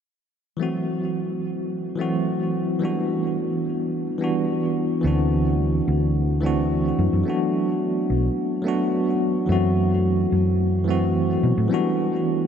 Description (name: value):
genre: sunset chillout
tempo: 108 BPM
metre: 4/4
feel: straight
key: unclear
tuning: A4 = 440 Hz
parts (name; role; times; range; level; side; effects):
- bell-like tine electric piano; accompaniment; 0.6-12.5 s; E3 to F#4; -21 LUFS; equal; medium stereo tremolo, auto-pan, ping-pong delay
- hollow-body short-scale fingered electric bass; bass; 5.0-11.7 s; B1 to B2; -22 LUFS; equal; none
room: wet cathedral reverb, RT60 6.9 s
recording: dreamy mix soaked in reverb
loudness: -20 LUFS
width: side -8 dB against mid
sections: 0.6-9.5 A section; 9.5-12.5 B section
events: none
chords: 0.6 F#m7b5; 2.8 Em7; 5.0 D7; 7.3 Bm7; 9.5 F#m7b5; 11.7 Em7